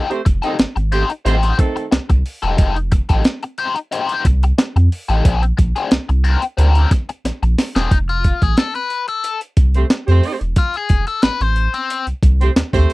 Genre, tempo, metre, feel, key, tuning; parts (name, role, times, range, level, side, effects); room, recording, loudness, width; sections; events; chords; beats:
funk; 90 BPM; 4/4; straight; F mixolydian; A4 = 440 Hz
overdriven semi-hollow guitar; accompaniment; 0.0-12.0 s; C4 to C5; -20 LUFS; left 5 dB; wah
mellow horn section; second line; 0.1-1.8, 9.7-12.9 s; Eb3 to Eb5; -20 LUFS; right 4 dB
breakbeat sampler-style drum kit; drums; 0.1-12.9 s; hi-hat, kick drum, snare drum; -16 LUFS; equal
round analog bass; bass; 0.3-12.9 s; E1 to F2; -15 LUFS; equal
little or no reverb; dry, close 1970s-style studio recording; -14 LUFS; side -20 dB against mid
0.0-7.9 A section; 7.9-12.9 B section
drum fill 7.2-7.9; overdriven electric guitar solo 7.9-12.9
0.0 F9; 5.2 Bb9; 7.9 F
0.59 1.26 1.92 | 2.59 3.25 3.92 4.58 | 5.25 5.91 6.58 7.24 | 7.91 8.57 9.24 9.90 | 10.57 11.23 11.89 12.56